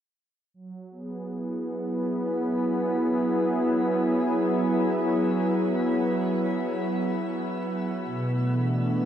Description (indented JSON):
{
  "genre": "ambient",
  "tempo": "free time",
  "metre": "none",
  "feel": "none",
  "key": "unclear",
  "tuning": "A4 = 440 Hz",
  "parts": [
    { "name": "warm analog pad", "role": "solo", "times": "0.5-9.1 s", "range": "B2 to G#4", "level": "-24 LUFS", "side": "equal", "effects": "chorus, diffuse ambient delay" }
  ],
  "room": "wet shimmer reverb, RT60 8.1 s",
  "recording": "none",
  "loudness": "-24 LUFS",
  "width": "side -9 dB against mid",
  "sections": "0.5-9.1 A section",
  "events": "none",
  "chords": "0.5 F#9sus4; 8.0 Bm"
}